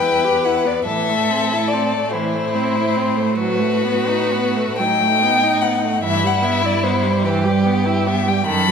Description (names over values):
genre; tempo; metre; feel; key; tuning
classical, slow romantic movement for string quartet; 40-50 BPM (dotted quarters); 6/8; rubato; E minor; A4 = 441 Hz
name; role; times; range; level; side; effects
dark violin; melody; 0.0-8.7 s; B4 to B5; -20 LUFS; left 6 dB; none
rich violin; second line; 0.0-8.7 s; D#4 to B4; -22 LUFS; left 3 dB; none
warm viola; accompaniment; 0.0-8.7 s; D#3 to G4; -22 LUFS; right 4 dB; none
rich cello; bass; 0.0-8.7 s; E2 to A2; -22 LUFS; right 5 dB; none
room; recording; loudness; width
wet recital hall reverb, RT60 1.9 s; minimal, uncompressed stereo recording; -16 LUFS; side -6 dB against mid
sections
0.0-8.7 A section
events
none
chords
0.0 Em; 0.9 Am; 3.4 B7/A; 6.0 Em/G